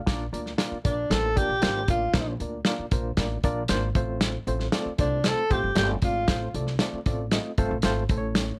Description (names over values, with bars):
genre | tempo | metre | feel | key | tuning
uptempo 1960s-style soul | 116 BPM | 4/4 | straight | unclear | A4 = 440 Hz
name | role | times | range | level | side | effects
reed electric piano | accompaniment | 0.0-8.6 s | A2 to Eb5 | -34 LUFS | equal | overdrive, fast tremolo
upright bass | bass | 0.1-8.5 s | G1 to D2 | -33 LUFS | equal | none
warm soul drum kit | drums | 0.1-8.5 s | hi-hat, kick drum, snare drum | -28 LUFS | equal | none
breathy tenor saxophone | melody | 0.9-6.5 s | D4 to A4 | -28 LUFS | equal | none
room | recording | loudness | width
light reverb | none | -26 LUFS | mono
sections
0.0-8.6 A section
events
none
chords
0.1 Bb; 4.0 F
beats
| 0.07 0.59 1.11 1.62 | 2.14 2.66 3.18 3.69 | 4.21 4.73 5.25 5.77 | 6.29 6.80 7.32 7.84 | 8.36